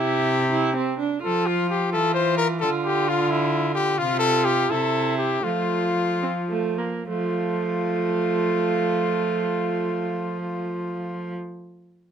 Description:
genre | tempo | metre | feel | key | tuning
classical, renaissance-style consort dance | 68-88 BPM (dotted quarters) | 6/8 | straight | F major | A4 = 441 Hz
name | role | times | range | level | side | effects
warm cornet | melody | 0.0-11.3 s | E4 to C5 | -25 LUFS | left 5 dB | none
warm viola | second line | 0.0-11.3 s | A3 to F4 | -26 LUFS | right 7 dB | none
rich cello | bass | 0.0-11.3 s | C3 to F3 | -26 LUFS | right 1 dB | none
room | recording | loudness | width
light reverb | none | -21 LUFS | side -8 dB against mid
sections
0.0-7.1 A section; 7.1-10.6 B section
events
slowing down 3.3-7.1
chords
0.0 C; 1.2 Fmaj7; 2.6 Dm; 4.0 Csus4; 5.4 F

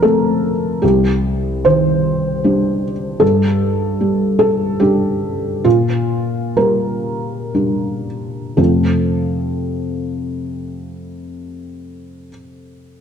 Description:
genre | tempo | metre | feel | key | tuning
neoclassical minimalist piano | 56-78 BPM | 3/4 | rubato | F mixolydian | A4 = 441 Hz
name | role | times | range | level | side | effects
felt-muted upright piano | solo | 0.0-13.0 s | C2 to C5 | -15 LUFS | equal | none
room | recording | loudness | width
moderate scoring stage reverb, RT60 1.5 s | dark, warm production | -14 LUFS | side -7 dB against mid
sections
0.0-8.6 A section; 8.6-11.7 B section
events
slowing down 2.1-8.6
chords
0.0 F; 0.8 Cmadd9; 3.2 Gsus2; 5.6 Bb6; 8.6 F

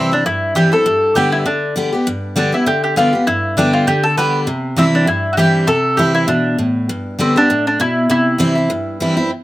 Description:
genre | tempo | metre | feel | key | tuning
bluegrass | 199 BPM | 4/4 | swing 55% on 8ths | C major | A4 = 440 Hz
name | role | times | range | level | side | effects
mandolin | melody | 0.0-9.0 s | C4 to B4 | -16 LUFS | equal | none
picked steel-string acoustic guitar | accompaniment | 0.0-9.3 s | G2 to G4 | -16 LUFS | equal | none
room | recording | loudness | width
small room ambience | rough home demo mix | -13 LUFS | side -16 dB against mid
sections
0.0-9.3 A section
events
none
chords
0.0 C; 0.9 G; 4.5 C; 6.9 G; 8.1 C

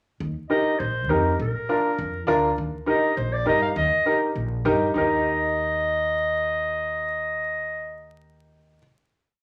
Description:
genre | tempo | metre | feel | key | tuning
latin, cumbia | 202 BPM | 4/4 | straight | Eb major | A4 = 440 Hz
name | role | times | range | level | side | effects
upright bass | bass | 0.2-8.8 s | Bb1 to G2 | -32 LUFS | equal | none
warm clarinet | melody | 0.5-8.1 s | Bb4 to F5 | -27 LUFS | equal | none
clear upright piano | accompaniment | 0.5-8.8 s | D4 to Bb4 | -26 LUFS | equal | none
room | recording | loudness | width
wet large studio reverb, RT60 0.9 s | vinyl crackle | -24 LUFS | mono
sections
0.2-5.0 A section; 5.0-7.3 final chord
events
none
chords
0.2 Eb; 1.4 Bb; 2.6 Eb

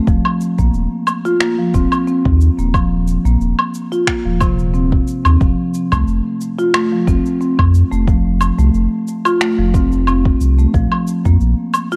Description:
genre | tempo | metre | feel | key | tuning
organic downtempo | 90 BPM | 4/4 | swing 54% on 16ths | unclear | A4 = 441 Hz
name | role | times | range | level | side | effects
marimba with medium mallets | arpeggios | 0.0-12.0 s | C3 to F4 | -19 LUFS | equal | analog delay
warm sub bass | bass | 0.1-11.5 s | Eb1 to F2 | -17 LUFS | equal | tube saturation, sidechain pumping
electronic kick drum | drums | 0.1-11.4 s | none | -20 LUFS | equal | none
electronic shaker, woodblock and finger snaps | drums | 0.1-12.0 s | none | -21 LUFS | equal | none
room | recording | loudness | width
little or no reverb | dry, gritty hardware recording, cassette tape | -15 LUFS | mono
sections
0.0-12.0 A section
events
none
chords
0.1 Ebsus2; 5.4 F; 10.7 Bb5

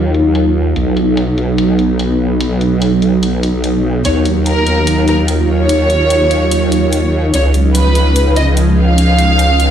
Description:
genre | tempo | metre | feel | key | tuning
heavy wobble dubstep | 146 BPM | 4/4 | swing 55% on 16ths, half-time | Eb minor | A4 = 440 Hz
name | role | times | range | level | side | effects
evolving wavetable pad | sustained chords | 0.0-9.7 s | F3 to F4 | -15 LUFS | right 1 dB | ensemble chorus, built-in reverb, phaser
formant-sweep wobble bass | bass | 0.0-9.7 s | B1 to Eb2 | -14 LUFS | equal | chorus, overdrive
electronic hi-hat | drums | 0.1-9.7 s | none | -24 LUFS | left 2 dB | overdrive, low-pass filter on hats, low-pass filter on cymbals, low-pass filter on snare
dark studio violin section | melody | 4.0-9.7 s | Bb4 to F5 | -16 LUFS | right 1 dB | dub echo
room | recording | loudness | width
moderate digital room reverb, RT60 0.9 s | played on a big sound system in a bare room, stone room reverb | -10 LUFS | side -9 dB against mid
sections
0.0-9.7 A section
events
filter sweep on ambient pad 0.0-9.7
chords
0.0 Ebmadd9; 0.8 B; 4.0 Ebmadd9; 7.3 Dbadd9

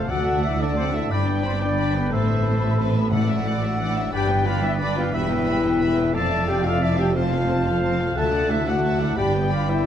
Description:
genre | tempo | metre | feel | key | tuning
cinematic, heroic adventure film score | 119 BPM (dotted quarters) | 12/8 | straight | unclear | A4 = 440 Hz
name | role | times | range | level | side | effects
dark symphonic violin section | melody | 0.0-9.9 s | B4 to B5 | -34 LUFS | left 6 dB | none
bright clarinet | second line | 0.0-9.9 s | B4 to E5 | -33 LUFS | left 1 dB | none
clear oboe | second line | 0.0-9.9 s | D5 to G5 | -33 LUFS | right 2 dB | none
mellow hollow flute section | second line | 0.0-9.9 s | F#5 to B5 | -35 LUFS | right 1 dB | none
warm symphonic violin section | second line | 0.0-9.9 s | A4 to F#5 | -36 LUFS | left 1 dB | none
warm symphonic viola section | accompaniment | 0.0-9.9 s | E3 to D4 | -33 LUFS | right 4 dB | none
warm French horn section | sustained chords | 0.0-9.9 s | A3 to A4 | -26 LUFS | left 3 dB | none
concert harp | arpeggios | 0.0-9.9 s | E2 to B5 | -30 LUFS | left 9 dB | none
warm symphonic cello section | bass | 0.0-9.9 s | D2 to A2 | -26 LUFS | right 2 dB | none
warm symphonic double bass section | bass | 0.0-9.9 s | E1 to D2 | -27 LUFS | right 3 dB | none
mellow trumpet section | stabs | 0.1-9.9 s | A4 to A5 | -29 LUFS | left 1 dB | none
timpani | percussion | 3.1-3.6 s | A2 | -29 LUFS | left 3 dB | none
room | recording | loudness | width
moderate recital hall reverb, RT60 1.6 s | none | -19 LUFS | side -9 dB against mid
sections
0.0-9.9 A section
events
none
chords
0.1 Dadd9; 1.1 G; 2.1 Amadd9; 3.1 Dadd9/A; 4.1 G; 5.1 Em; 6.1 Dmadd9/F; 7.2 F; 8.2 Dadd9; 9.2 G

